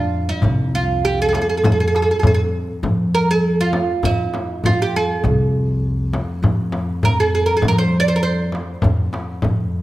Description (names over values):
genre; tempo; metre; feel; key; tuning
Arabic maqam ensemble; 100 BPM; 4/4; straight; F maqam rast; A4 = 440 Hz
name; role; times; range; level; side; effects
oud; melody; 0.0-9.4 s; E4-50c to D5; -19 LUFS; right 2 dB; none
upright bass; bass; 0.0-9.8 s; C2 to F3; -20 LUFS; equal; none
dark double bass; drone; 0.0-9.8 s; F2; -28 LUFS; left 1 dB; none
darbuka; percussion; 0.3-9.6 s; none; -25 LUFS; right 1 dB; none
frame drum; percussion; 0.4-9.6 s; none; -22 LUFS; left 2 dB; none
room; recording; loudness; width
light reverb; none; -16 LUFS; side -16 dB against mid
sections
0.0-9.8 A section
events
none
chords
none